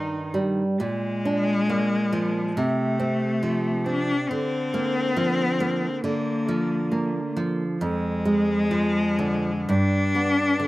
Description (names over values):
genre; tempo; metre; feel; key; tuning
romantic duo for cello and classical guitar; 68 BPM; 4/4; rubato; unclear; A4 = 436 Hz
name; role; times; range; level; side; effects
clear cello; melody; 0.0-10.7 s; Ab3 to Eb4; -24 LUFS; left 2 dB; none
nylon-string guitar; accompaniment; 0.0-10.7 s; F2 to Eb4; -24 LUFS; right 2 dB; none
room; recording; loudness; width
little or no reverb; recorded outdoors, with no room sound; -22 LUFS; side -18 dB against mid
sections
0.0-10.7 A section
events
none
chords
0.0 Eb/G; 0.8 Bb; 2.6 F/C; 4.3 Bb/D; 7.8 Ddim/F; 9.7 G